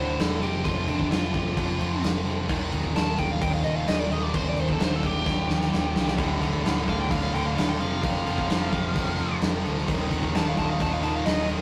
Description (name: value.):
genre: hard rock.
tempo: 130 BPM.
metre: 4/4.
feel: straight.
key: unclear.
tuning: A4 = 439 Hz.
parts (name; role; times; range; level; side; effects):
biting lead guitar; melody; 0.0-11.5 s; D4 to A5; -33 LUFS; equal; overdrive.
high-gain distorted guitar; riff; 0.0-11.6 s; D2 to F3; -32 LUFS; equal; distortion.
picked electric bass; bass; 0.0-11.6 s; D1 to F2; -33 LUFS; equal; none.
big rock drum kit; drums; 0.2-11.6 s; crash cymbal, kick drum, snare drum; -29 LUFS; equal; none.
tight distorted guitar; riff; 6.2-11.6 s; D2 to F3; -34 LUFS; equal; distortion.
room: moderate studio reverb, RT60 0.6 s.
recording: rough rehearsal-room recording, tube saturation.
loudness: -25 LUFS.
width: mono.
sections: 0.0-11.6 A section.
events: lead electric guitar solo 0.0-11.6; drum fill 5.3-6.2.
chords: 0.4 F5; 2.5 Eb; 6.2 D5; 7.8 F5; 9.9 Eb5.